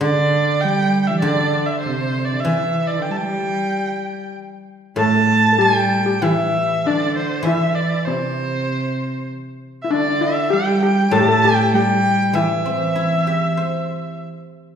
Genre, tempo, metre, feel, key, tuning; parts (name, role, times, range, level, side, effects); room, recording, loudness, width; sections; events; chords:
chinese traditional, Chinese chamber ensemble; 98 BPM; 4/4; rubato; A4 = 442 Hz
rich erhu; melody; 0.0-14.2 s; C5 to A5; -20 LUFS; right 1 dB
rich cello; second line; 0.0-14.2 s; C3 to A3; -22 LUFS; right 3 dB
guzheng; accompaniment; 0.0-14.8 s; A2 to C5; -24 LUFS; left 2 dB
steel pan; second line; 5.0-14.2 s; C4 to A4; -22 LUFS; left 5 dB
wet recital hall reverb, RT60 1.8 s; heard from further back in the room; -16 LUFS; side -8 dB against mid
0.0-5.0 A section; 5.0-14.8 B section